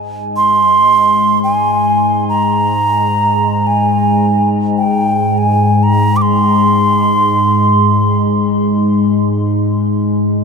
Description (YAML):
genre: world meditative, free-time meditation music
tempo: free time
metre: none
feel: none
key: Ab major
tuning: A4 = 440 Hz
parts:
  - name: deep dark ambient pad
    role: drone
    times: 0.0-10.4 s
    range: Ab2 to Ab3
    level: -14 LUFS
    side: left 1 dB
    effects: chorus, built-in reverb
  - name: bright alto ocarina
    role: melody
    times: 0.4-8.2 s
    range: G5 to D6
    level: -13 LUFS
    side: right 2 dB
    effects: none
room: wet huge ambient reverb, RT60 7.5 s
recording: none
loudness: -10 LUFS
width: side -5 dB against mid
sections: 0.0-10.4 A section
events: none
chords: none